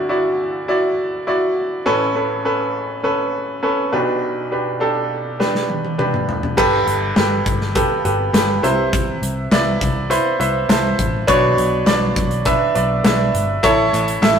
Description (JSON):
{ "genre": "piano-driven pop", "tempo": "102 BPM", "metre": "4/4", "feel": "straight", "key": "unclear", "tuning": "A4 = 442 Hz", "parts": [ { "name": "bright grand piano", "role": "accompaniment", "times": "0.0-14.4 s", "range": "A1 to A5", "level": "-17 LUFS", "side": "right 1 dB", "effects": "none" }, { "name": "modern studio drum kit", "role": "drums", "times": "5.4-14.4 s", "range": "crash cymbal, hi-hat, kick drum, snare drum, toms", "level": "-20 LUFS", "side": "left 1 dB", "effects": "none" }, { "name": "vintage muted picked electric bass", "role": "bass", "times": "6.6-14.4 s", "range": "G1 to C2", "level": "-23 LUFS", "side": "left 1 dB", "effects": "none" }, { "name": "group handclap", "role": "percussion", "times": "7.2-14.4 s", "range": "none", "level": "-32 LUFS", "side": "left 3 dB", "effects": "none" } ], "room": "wet stone room reverb, RT60 1.2 s", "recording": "rough rehearsal-room recording, warm saturation", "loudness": "-16 LUFS", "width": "side -7 dB against mid", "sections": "0.0-6.6 A section; 6.6-14.4 B section", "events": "drum fill 5.4-6.6; grand piano fill 10.1-11.3", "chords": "0.0 Dadd9; 1.9 Aadd9; 3.9 G/B; 6.6 Gadd9; 8.6 Cmaj7; 11.3 Bmadd9; 13.6 A", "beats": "0.10 0.69 1.28 | 1.86 2.45 3.04 3.63 | 4.22 4.81 5.40 5.99 | 6.58 7.16 7.75 8.34 | 8.93 9.52 10.11 10.70 | 11.29 11.87 12.46 13.05 | 13.64 14.23" }